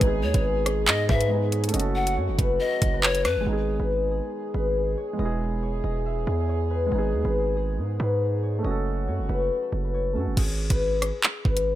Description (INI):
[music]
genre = hip hop, drill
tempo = 139 BPM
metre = 4/4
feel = half-time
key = G# phrygian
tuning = A4 = 441 Hz
[part]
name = concert harp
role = melody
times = 0.0-11.8 s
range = G#4 to E5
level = -29 LUFS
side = left 4 dB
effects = none
[part]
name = dark concert grand piano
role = accompaniment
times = 0.0-10.4 s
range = G#3 to A4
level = -32 LUFS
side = right 4 dB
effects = none
[part]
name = warm French horn section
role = sustained chords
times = 0.0-10.4 s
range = C#3 to G#4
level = -34 LUFS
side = left 2 dB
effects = stereo widening
[part]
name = distorted 808-style bass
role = bass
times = 0.0-11.8 s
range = E1 to G#2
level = -26 LUFS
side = right 1 dB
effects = distortion
[part]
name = drill drum kit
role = drums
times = 0.0-3.4, 10.4-11.7 s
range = crash cymbal, handclaps, hi-hat, kick drum, rim click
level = -23 LUFS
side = right 1 dB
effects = overdrive
[part]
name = breathy pan flute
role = second line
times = 0.2-3.5 s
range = B4 to F#5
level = -30 LUFS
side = left 2 dB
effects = digital delay
[sound]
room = small room ambience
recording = none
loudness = -22 LUFS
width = side -13 dB against mid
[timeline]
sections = 0.0-3.5 A section; 3.5-10.4 B section; 10.4-11.8 C section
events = none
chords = 0.0 G#m; 1.7 F#m; 3.5 G#m; 5.2 E; 6.9 G#m; 8.6 F#m; 10.4 G#m